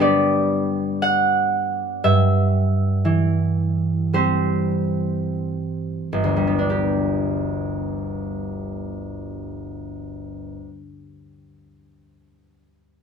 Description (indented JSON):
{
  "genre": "classical, solo harp piece",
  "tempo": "41-59 BPM",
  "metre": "4/4",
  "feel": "rubato",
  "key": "G major",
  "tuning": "A4 = 436 Hz",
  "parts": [
    { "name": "concert harp", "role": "solo", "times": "0.0-11.1 s", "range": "G1 to F#5", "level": "-20 LUFS", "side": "right 1 dB", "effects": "none" }
  ],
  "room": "light reverb",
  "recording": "none",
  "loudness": "-19 LUFS",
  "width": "side -6 dB against mid",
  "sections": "0.0-6.7 A section; 6.7-11.7 B section",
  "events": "slowing down 0.0-6.7",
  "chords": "0.0 G; 2.0 C/G; 6.7 G"
}